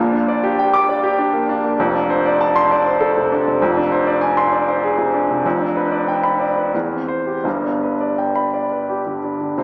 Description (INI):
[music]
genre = classical, romantic character piece for solo piano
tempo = 80-101 BPM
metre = 3/4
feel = rubato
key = unclear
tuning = A4 = 440 Hz
[part]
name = warm grand piano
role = solo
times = 0.0-9.6 s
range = F1 to D6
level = -15 LUFS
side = equal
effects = none
[sound]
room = wet scoring stage reverb, RT60 2.1 s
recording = worn, warbling old tape, cassette tape, warbly pitch drift, small speaker sound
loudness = -15 LUFS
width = side -38 dB against mid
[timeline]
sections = 0.0-9.6 A section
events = none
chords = 0.0 Gm/Bb; 1.8 Dm7/F; 3.6 Dm7b5/F; 5.4 G7/F; 6.7 C/E; 7.4 G